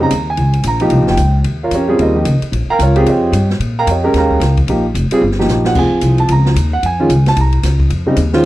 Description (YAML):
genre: modal jazz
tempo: 223 BPM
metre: 4/4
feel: swing 60% on 8ths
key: Eb mixolydian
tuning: A4 = 437 Hz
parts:
  - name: warm grand piano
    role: accompaniment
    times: 0.0-8.5 s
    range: Db3 to Bb5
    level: -14 LUFS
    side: right 1 dB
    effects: none
  - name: upright bass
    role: bass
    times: 0.0-8.4 s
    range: F1 to Bb2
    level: -14 LUFS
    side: equal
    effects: none
  - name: open jazz drum kit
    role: drums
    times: 0.1-8.4 s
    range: crash cymbal, hi-hat, kick drum, ride cymbal, snare drum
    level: -23 LUFS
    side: equal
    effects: none
room: studio ambience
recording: dry, close 1970s-style studio recording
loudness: -11 LUFS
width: side -16 dB against mid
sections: 0.0-8.5 A section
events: drum fill 5.5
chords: 0.0 Eb9